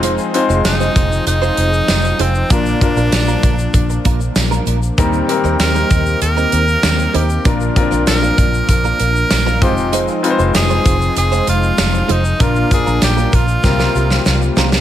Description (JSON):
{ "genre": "1980s-style pop", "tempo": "97 BPM", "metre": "4/4", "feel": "straight", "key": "F dorian", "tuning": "A4 = 442 Hz", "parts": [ { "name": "clear baby grand piano", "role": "accompaniment", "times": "0.0-14.8 s", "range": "Bb2 to F5", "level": "-20 LUFS", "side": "left 4 dB", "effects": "none" }, { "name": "brassy analog pad", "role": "sustained chords", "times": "0.0-14.8 s", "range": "C3 to Ab4", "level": "-24 LUFS", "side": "left 2 dB", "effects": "chorus" }, { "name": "direct-recorded clean electric guitar", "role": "riff", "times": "0.0-14.8 s", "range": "G3 to C5", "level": "-24 LUFS", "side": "right 7 dB", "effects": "ensemble chorus, ping-pong delay" }, { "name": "vintage muted fingered electric bass", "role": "bass", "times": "0.0-14.8 s", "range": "F1 to Eb2", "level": "-17 LUFS", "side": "equal", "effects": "none" }, { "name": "modern studio drum kit", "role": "drums", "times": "0.0-14.8 s", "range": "hi-hat, kick drum, snare drum, tambourine", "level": "-17 LUFS", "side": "right 1 dB", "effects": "gated reverb" }, { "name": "tube shaker", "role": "percussion", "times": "0.0-14.8 s", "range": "none", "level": "-33 LUFS", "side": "left 10 dB", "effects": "none" }, { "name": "edgy tenor saxophone", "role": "melody", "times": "0.7-14.6 s", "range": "C4 to Bb4", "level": "-19 LUFS", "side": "right 1 dB", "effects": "ping-pong delay" } ], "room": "light reverb, small room ambience", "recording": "none", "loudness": "-12 LUFS", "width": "side -11 dB against mid", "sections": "0.0-14.8 A section", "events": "drum fill 13.6-14.8", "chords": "0.0 Fm7; 2.5 Bb; 5.0 Eb6; 7.5 Bb; 9.6 Fm7; 12.4 Bb; 13.6 C7sus4" }